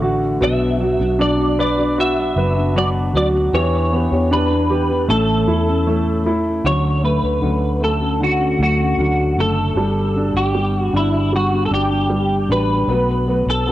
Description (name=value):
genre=pop ballad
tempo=77 BPM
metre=4/4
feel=straight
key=unclear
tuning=A4 = 441 Hz
part: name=warm grand piano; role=accompaniment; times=0.0-13.7 s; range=B2 to B4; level=-19 LUFS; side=right 1 dB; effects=cassette tape
part: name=nylon-string guitar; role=arpeggios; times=0.0-13.7 s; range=A2 to A4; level=-25 LUFS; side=left 4 dB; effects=cassette tape, tape echo
part: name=vintage muted fingered electric bass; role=bass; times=0.0-13.7 s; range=F#1 to E2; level=-21 LUFS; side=equal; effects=none
part: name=clean electric guitar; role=melody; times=0.4-13.7 s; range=E4 to E5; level=-21 LUFS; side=equal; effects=ensemble chorus, cassette tape
room=light reverb, small room ambience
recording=home recording on cassette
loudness=-15 LUFS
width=side -14 dB against mid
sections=0.0-6.6 A section; 6.6-13.7 B section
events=none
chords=0.4 Bm; 3.5 Em7; 5.1 A; 6.6 Dmaj7; 9.8 Gmaj7; 12.9 Bm7